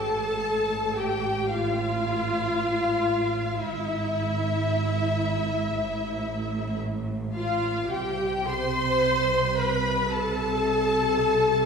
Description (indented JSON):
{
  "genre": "classical, slow romantic movement for string orchestra",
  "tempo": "56 BPM",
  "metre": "4/4",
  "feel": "rubato",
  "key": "A minor",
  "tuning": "A4 = 436 Hz",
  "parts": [
    { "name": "rich studio violin section", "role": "melody", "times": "0.0-11.7 s", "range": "E5 to C6", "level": "-31 LUFS", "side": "left 5 dB", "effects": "none" },
    { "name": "clear chamber violin section", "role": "second line", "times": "0.0-11.7 s", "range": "E5 to C6", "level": "-34 LUFS", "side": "left 2 dB", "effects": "none" },
    { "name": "rich studio viola section", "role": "accompaniment", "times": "0.0-11.7 s", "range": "E4 to C5", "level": "-26 LUFS", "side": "equal", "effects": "none" },
    { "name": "clear chamber double bass section", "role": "bass", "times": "0.0-11.7 s", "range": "G#1 to C2", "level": "-33 LUFS", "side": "right 4 dB", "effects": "none" },
    { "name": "rich studio cello section", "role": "bass", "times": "0.0-11.7 s", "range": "G#2 to C3", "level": "-32 LUFS", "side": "right 3 dB", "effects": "none" }
  ],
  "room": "wet scoring stage reverb, RT60 1.9 s",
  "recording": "heard from further back in the room",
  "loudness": "-23 LUFS",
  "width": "side -6 dB against mid",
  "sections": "0.0-11.7 A section",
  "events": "none",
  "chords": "0.0 Fadd9/A; 3.6 E/G#; 5.7 A5; 7.9 Am9/C"
}